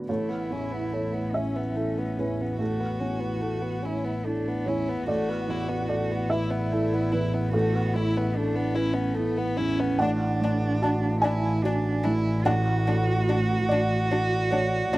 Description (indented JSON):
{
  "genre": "neoclassical piano and strings",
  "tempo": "48 BPM (dotted quarters)",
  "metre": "6/8",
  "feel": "rubato",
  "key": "A major",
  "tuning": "A4 = 440 Hz",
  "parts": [
    { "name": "felt-muted upright piano", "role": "accompaniment", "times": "0.0-15.0 s", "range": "A1 to A5", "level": "-28 LUFS", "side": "right 2 dB", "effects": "slapback echo" },
    { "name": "dark violin", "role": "melody", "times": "0.1-15.0 s", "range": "A3 to E4", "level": "-31 LUFS", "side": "left 3 dB", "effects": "none" },
    { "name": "warm cello", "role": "second line", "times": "0.1-15.0 s", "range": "B3 to F#4", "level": "-30 LUFS", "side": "right 2 dB", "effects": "none" },
    { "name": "dark double bass", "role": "bass", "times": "0.1-15.0 s", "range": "A1", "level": "-28 LUFS", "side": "equal", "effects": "none" }
  ],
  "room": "little or no reverb",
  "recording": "recorded outdoors, with no room sound",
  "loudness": "-23 LUFS",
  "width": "side -18 dB against mid",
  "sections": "0.1-15.0 A section",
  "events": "none",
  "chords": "0.1 Aadd9; 5.1 Esus4/A; 10.0 D/A",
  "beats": "| 0.08 1.33 | 2.60 3.85 | 5.08 6.31 | 7.53 8.75 | 9.99 11.22 | 12.45 13.69 | 14.92"
}